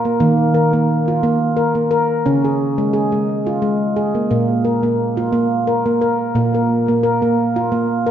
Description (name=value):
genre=world meditative, meditative tuned percussion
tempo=88 BPM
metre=3/4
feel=swing 55% on 16ths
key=Bb minor pentatonic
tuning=A4 = 442 Hz
part: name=handpan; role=solo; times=0.0-8.1 s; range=Bb2 to Bb4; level=-15 LUFS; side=equal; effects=analog delay
room=wet echo chamber reverb, RT60 1.9 s, small room ambience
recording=echo-heavy mix, nothing above 7.8 kHz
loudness=-15 LUFS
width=side -9 dB against mid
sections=0.0-8.1 A section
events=none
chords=0.2 Eb5; 2.3 Db5; 4.3 Bb5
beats=| 0.20 0.89 1.57 | 2.25 2.94 3.62 | 4.30 4.98 5.67 | 6.35 7.03 7.71